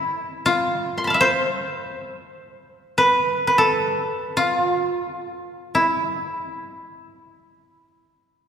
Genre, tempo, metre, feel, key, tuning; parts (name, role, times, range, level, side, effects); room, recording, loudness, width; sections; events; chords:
japanese traditional, Japanese chamber music; free time; A hirajoshi; A4 = 441 Hz
koto; solo; 0.0-8.0 s; E4 to C6; -19 LUFS; equal
wet church reverb, RT60 2.7 s; recorded in a church or concert hall; -19 LUFS; side -8 dB against mid
0.0-8.5 A section